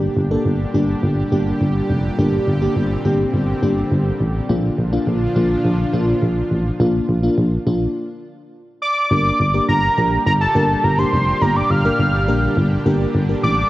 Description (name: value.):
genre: synth-pop.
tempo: 104 BPM.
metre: 4/4.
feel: straight.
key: G minor.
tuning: A4 = 440 Hz.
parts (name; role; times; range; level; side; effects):
FM electric piano with soft pad layer; accompaniment; 0.0-13.6 s; Bb3 to Bb4; -22 LUFS; left 1 dB; chorus, tremolo.
lush unison pad; sustained chords; 0.0-13.7 s; Bb2 to G4; -24 LUFS; equal; chorus.
solid FM bass; bass; 0.0-13.6 s; F1 to Bb1; -18 LUFS; equal; none.
fat analog lead; melody; 8.8-13.7 s; A5 to F6; -18 LUFS; equal; chorus.
room: moderate lush hall reverb, RT60 2.5 s.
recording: worn, warbling old tape, cassette tape, warbly pitch drift.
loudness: -15 LUFS.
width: side -16 dB against mid.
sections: 0.0-9.1 A section; 9.1-13.7 B section.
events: stop 8.0-9.1.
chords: 0.0 Gm; 4.5 Bb; 9.1 Gm.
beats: 0.46 1.03 1.61 | 2.19 2.76 3.34 3.92 | 4.49 5.07 5.65 6.22 | 6.80 7.38 7.96 8.53 | 9.11 9.69 10.26 10.84 | 11.42 11.99 12.57 13.15.